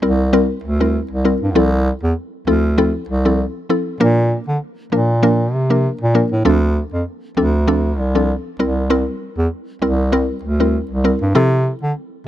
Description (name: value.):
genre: afrobeats.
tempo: 98 BPM.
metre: 4/4.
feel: swing 55% on 16ths.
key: unclear.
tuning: A4 = 440 Hz.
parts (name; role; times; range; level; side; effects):
mallet-like synth pluck; accompaniment; 0.0-11.9 s; F3 to Bb4; -18 LUFS; left 1 dB; chorus.
breathy bass clarinet; bass; 0.0-11.9 s; C2 to D3; -16 LUFS; equal; none.
room: studio ambience.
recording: none.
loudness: -15 LUFS.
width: side -12 dB against mid.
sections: 0.0-12.3 A section.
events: none.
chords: 0.0 C7; 1.6 Fmaj7/C; 4.0 Bb; 6.5 Dm7; 8.6 C7; 11.4 Fmaj7/C.